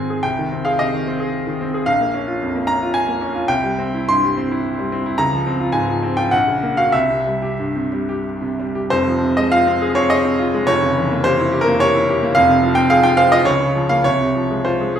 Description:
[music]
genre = classical, romantic character piece for solo piano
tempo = 88-114 BPM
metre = 3/4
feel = rubato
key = F minor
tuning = A4 = 440 Hz
[part]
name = bright baby grand piano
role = solo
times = 0.0-15.0 s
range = F1 to C6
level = -15 LUFS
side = equal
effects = none
[sound]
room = wet large studio reverb, RT60 1.3 s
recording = heard from further back in the room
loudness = -15 LUFS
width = side -9 dB against mid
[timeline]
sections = 0.0-8.9 A section; 8.9-15.0 B section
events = none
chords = 0.2 Ab/C; 1.9 Bbm; 3.5 C; 5.2 Dbmaj7; 6.3 Gb/Bb; 6.9 C; 8.9 Fm; 10.7 Edim7/F; 12.4 Fm; 13.5 Bbm/Db; 14.1 Fm/C

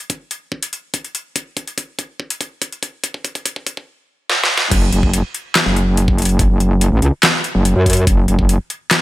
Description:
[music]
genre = heavy wobble dubstep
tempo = 143 BPM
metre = 4/4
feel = half-time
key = F# minor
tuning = A4 = 440 Hz
[part]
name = dubstep drum kit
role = drums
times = 0.0-9.0 s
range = crash cymbal, handclaps, hi-hat, snare drum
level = -17 LUFS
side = equal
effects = overdrive, high-pass filter on hats, high-pass filter on snare, high-pass filter on cymbals, high-pass filter on room
[part]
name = electronic kick drum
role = drums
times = 0.1-8.5 s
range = none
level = -18 LUFS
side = equal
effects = none
[part]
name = metallic wobble bass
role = bass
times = 4.7-8.6 s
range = F#1 to F#2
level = -14 LUFS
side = equal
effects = chorus, overdrive
[sound]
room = little or no reverb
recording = high-pass filter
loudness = -15 LUFS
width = side -16 dB against mid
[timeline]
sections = 0.0-4.7 A section; 4.7-9.0 B section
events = build-up 0.0-4.7; drum fill 0.0-3.9, 4.3-4.7; drop 4.7-9.0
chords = none

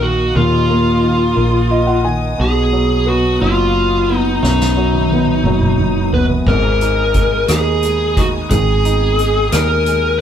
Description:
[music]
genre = six-eight pop ballad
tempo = 59 BPM (dotted quarters)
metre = 6/8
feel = straight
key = unclear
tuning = A4 = 440 Hz
[part]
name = lead guitar through a small cranked amp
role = melody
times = 0.0-10.2 s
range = D#4 to B4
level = -16 LUFS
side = equal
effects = overdrive
[part]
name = warm concert grand piano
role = accompaniment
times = 0.0-10.2 s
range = F#2 to Ab5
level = -19 LUFS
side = equal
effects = none
[part]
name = rich studio string section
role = sustained chords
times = 0.0-10.2 s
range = Cb4 to Eb6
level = -28 LUFS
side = left 3 dB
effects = none
[part]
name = woody fretless electric bass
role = bass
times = 0.0-10.2 s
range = F#1 to Eb2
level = -18 LUFS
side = equal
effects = none
[part]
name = soft-mallet drum kit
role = drums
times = 4.4-10.0 s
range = crash cymbal, hi-hat, kick drum, rim click, snare drum, toms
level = -18 LUFS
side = equal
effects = none
[sound]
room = moderate stone room reverb, RT60 1.3 s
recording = band playing live in one room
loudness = -12 LUFS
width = side -9 dB against mid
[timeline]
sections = 0.0-6.5 A section; 6.5-10.2 B section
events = grand piano fill 1.4-2.4; drum fill 4.4-6.5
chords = 0.0 Ebsus2; 2.4 B; 6.5 Abmadd9

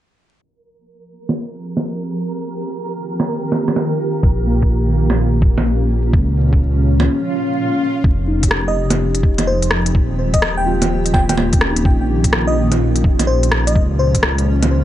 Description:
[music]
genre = future garage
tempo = 126 BPM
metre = 4/4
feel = swing 65% on 16ths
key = F minor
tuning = A4 = 440 Hz
[part]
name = granular cloud pad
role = sustained chords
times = 1.6-14.8 s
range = Bb2 to G4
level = -22 LUFS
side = right 1 dB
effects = built-in reverb, sidechain pumping
[part]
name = flickering grainy texture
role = texture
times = 1.2-7.1 s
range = Bb4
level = -31 LUFS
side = right 4 dB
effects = built-in reverb
[part]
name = organic electronic drum kit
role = drums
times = 1.3-14.7 s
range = bongos, hi-hat, rim click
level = -19 LUFS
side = right 1 dB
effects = none
[part]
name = dark detuned saw bass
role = bass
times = 4.2-14.8 s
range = Eb1 to Db2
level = -17 LUFS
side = equal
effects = sidechain pumping
[part]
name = electronic kick drum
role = drums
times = 4.2-14.2 s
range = none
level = -15 LUFS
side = equal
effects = none
[part]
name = muted felt-like synth keys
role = accompaniment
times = 4.5-13.8 s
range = Bb3 to G4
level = -26 LUFS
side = left 2 dB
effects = chorus, sidechain pumping, tape echo
[part]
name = swell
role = sound effects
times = 7.2-8.0 s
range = none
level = -28 LUFS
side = right 2 dB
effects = none
[part]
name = bell-like FM electric piano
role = melody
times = 8.7-14.2 s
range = C5 to G5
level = -23 LUFS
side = left 1 dB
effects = chorus, digital delay
[sound]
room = little or no reverb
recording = vinyl crackle, low-pass filter, nothing above 10.9 kHz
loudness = -14 LUFS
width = side -12 dB against mid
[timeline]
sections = 0.4-8.0 A section; 8.0-14.8 B section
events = filter sweep on ambient pad 0.4-8.0; filter sweep 0.4-8.0; break 7.1-8.0; swell 7.2-8.0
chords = 0.4 Fm; 2.3 Ebadd9; 4.2 Bbm; 6.1 Db5; 8.0 Fm7; 9.9 Eb9; 11.9 Bbm; 13.8 Db

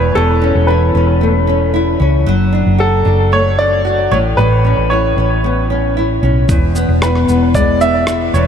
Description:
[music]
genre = acoustic pop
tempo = 114 BPM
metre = 4/4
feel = straight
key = A major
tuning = A4 = 442 Hz
[part]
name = bright upright piano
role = melody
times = 0.0-8.5 s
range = A4 to E5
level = -16 LUFS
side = equal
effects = ping-pong delay
[part]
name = nylon-string guitar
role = accompaniment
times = 0.0-8.5 s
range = E2 to F#4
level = -15 LUFS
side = left 1 dB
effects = double-tracked left and right
[part]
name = hollow-body short-scale fingered electric bass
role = bass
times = 0.0-8.5 s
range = E1 to C#2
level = -15 LUFS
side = equal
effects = none
[part]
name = dusty soul sampler-style drum kit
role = drums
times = 6.5-8.5 s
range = kick drum, rim click, shaker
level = -17 LUFS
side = equal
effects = none
[sound]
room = moderate huge ambient reverb, RT60 5.2 s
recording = dreamy mix soaked in reverb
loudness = -11 LUFS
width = side -8 dB against mid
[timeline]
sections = 0.0-8.5 A section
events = none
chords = 0.0 Aadd9/E; 2.3 D/F#; 4.1 Aadd9; 6.5 E

